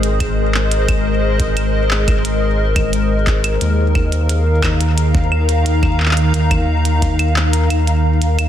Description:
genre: IDM.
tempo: 88 BPM.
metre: 4/4.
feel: straight.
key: unclear.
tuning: A4 = 440 Hz.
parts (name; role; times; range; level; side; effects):
hollow soft pad; sustained chords; 0.0-8.5 s; Eb3 to Bb5; -18 LUFS; left 1 dB; ensemble chorus, vintage 12-bit sampler grit.
round analog bass; bass; 0.0-8.5 s; Ab1 to Eb2; -16 LUFS; equal; none.
glitchy drum kit; drums; 0.0-8.5 s; claves, handclaps, hi-hat; -23 LUFS; right 1 dB; studio reverb, ping-pong delay.
electronic kick drum; drums; 0.2-7.2 s; none; -18 LUFS; equal; studio reverb.
room: light reverb.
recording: dense, heavily limited modern master.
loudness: -13 LUFS.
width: side -10 dB against mid.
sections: 0.0-8.5 A section.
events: kick drops out 7.7-8.5.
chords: 0.0 Abadd9; 3.6 Ebsus2.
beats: 0.20 | 0.89 1.57 2.25 2.93 | 3.61 4.29 4.98 5.66 | 6.34 7.02 7.70 8.38.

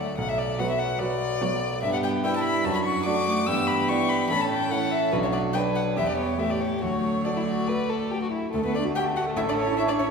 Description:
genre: quick classical-period movement for piano quintet.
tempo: 145 BPM.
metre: 4/4.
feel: straight.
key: D major.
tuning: A4 = 442 Hz.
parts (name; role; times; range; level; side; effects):
warm violin; melody; 0.0-10.1 s; A4 to E6; -28 LUFS; left 4 dB; none.
clear cello; second line; 0.0-10.1 s; E3 to G4; -32 LUFS; right 4 dB; none.
rich violin; second line; 0.0-10.1 s; A3 to B4; -31 LUFS; left 2 dB; none.
clear concert grand piano; accompaniment; 0.0-10.1 s; A1 to A5; -28 LUFS; right 1 dB; none.
warm viola; accompaniment; 0.0-10.1 s; A3 to C#5; -30 LUFS; right 2 dB; none.
room: wet scoring stage reverb, RT60 1.5 s.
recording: heard from further back in the room.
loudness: -23 LUFS.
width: side -5 dB against mid.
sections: 0.0-8.5 A section; 8.5-10.1 B section.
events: none.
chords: 0.2 Bm; 1.8 Em/G; 2.6 D/F#; 3.5 Em7/G; 4.3 A; 5.1 Bm; 6.0 Em; 6.4 A7; 6.8 D; 9.4 A.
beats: | 0.19 0.60 1.01 1.42 | 1.83 2.24 2.65 3.06 | 3.48 3.89 4.30 4.71 | 5.13 5.55 5.96 6.39 | 6.82 7.25 7.68 8.11 | 8.54 8.95 9.37 9.78.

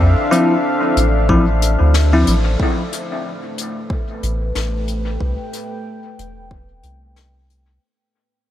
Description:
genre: ambient dub.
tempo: 92 BPM.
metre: 4/4.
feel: swing 57% on 16ths.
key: A minor.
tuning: A4 = 440 Hz.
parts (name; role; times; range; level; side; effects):
deep dark ambient pad; sustained chords; 0.0-7.8 s; A3 to G5; -22 LUFS; left 1 dB; chorus, built-in reverb.
soft dub sub bass; bass; 0.0-7.8 s; E1 to F2; -16 LUFS; equal; none.
bell-like tine electric piano; stabs; 0.3-2.3 s; F3 to E4; -19 LUFS; left 1 dB; phaser, dub echo.
jazz brush drum kit; drums; 0.3-7.6 s; hi-hat, snare drum; -28 LUFS; left 4 dB; dub echo.
electronic kick drum; drums; 1.3-6.7 s; none; -21 LUFS; equal; none.
room: light reverb, small room ambience.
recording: none.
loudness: -15 LUFS.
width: side -12 dB against mid.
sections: 0.0-2.6 A section; 2.6-7.8 B section.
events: band accent 1.9-2.3; fade-out 2.6-7.8.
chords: 0.0 Dm9; 2.6 Am7.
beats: 0.64 1.29 1.94 | 2.60 3.25 3.90 4.55 | 5.21 5.86 6.51 7.16.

